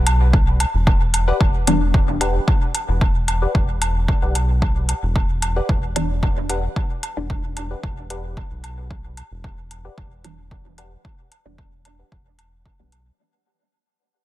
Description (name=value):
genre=dub techno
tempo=112 BPM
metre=4/4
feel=straight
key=E minor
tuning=A4 = 442 Hz
part: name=filtered dub chord stab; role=stabs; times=0.0-1.8, 6.0-12.9 s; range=E3 to D4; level=-24 LUFS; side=left 1 dB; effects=phaser, sidechain pumping, dub echo
part: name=round analog bass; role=bass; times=0.0-13.1 s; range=E1 to B1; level=-21 LUFS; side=equal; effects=sidechain pumping
part: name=electronic hi-hat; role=drums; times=0.1-13.0 s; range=none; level=-24 LUFS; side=left 2 dB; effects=overdrive
part: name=woodblock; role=percussion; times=0.1-13.0 s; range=none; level=-28 LUFS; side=right 1 dB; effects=sidechain pumping on perc, dub echo
part: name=electronic kick drum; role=drums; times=0.3-12.8 s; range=none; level=-19 LUFS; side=equal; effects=overdrive
part: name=wavetable chord stab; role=riff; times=1.3-12.9 s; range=G4 to F#5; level=-29 LUFS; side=left 3 dB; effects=sidechain pumping, dub echo
room=little or no reverb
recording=dense, heavily limited modern master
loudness=-17 LUFS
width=side -15 dB against mid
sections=0.0-13.2 A section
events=fade-out 0.0-13.2; filter sweep on synth stab 0.0-13.2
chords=0.0 Em7